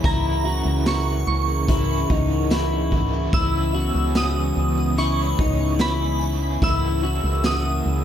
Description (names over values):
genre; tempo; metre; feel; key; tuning
dream pop; 73 BPM; 4/4; straight; unclear; A4 = 439 Hz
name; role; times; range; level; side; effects
biting overdriven guitar; accompaniment; 0.0-8.0 s; C#3 to G#4; -31 LUFS; right 5 dB; tremolo, lush chorus, tape echo
hollow soft pad; sustained chords; 0.0-8.0 s; C#3 to A#4; -28 LUFS; equal; chorus
electric guitar through a small old amp; arpeggios; 0.0-8.0 s; D#4 to F#4; -27 LUFS; left 6 dB; analog chorus, tape echo
organ-like FM bass; bass; 0.0-8.0 s; C#2; -23 LUFS; equal; none
raw garage drum kit; drums; 0.0-7.6 s; hi-hat, kick drum, snare drum, tambourine; -24 LUFS; equal; none
shimmering bell with halo; melody; 0.1-8.0 s; A#5 to E6; -28 LUFS; right 3 dB; ensemble chorus, tremolo, tape echo
room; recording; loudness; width
light reverb, small room ambience; echo-heavy mix; -19 LUFS; side -10 dB against mid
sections
0.0-8.0 A section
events
none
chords
0.0 F#7/C#; 3.3 C#m7; 6.6 F#7/C#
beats
| 0.04 0.86 1.69 2.51 | 3.33 4.15 4.97 5.80 | 6.62 7.44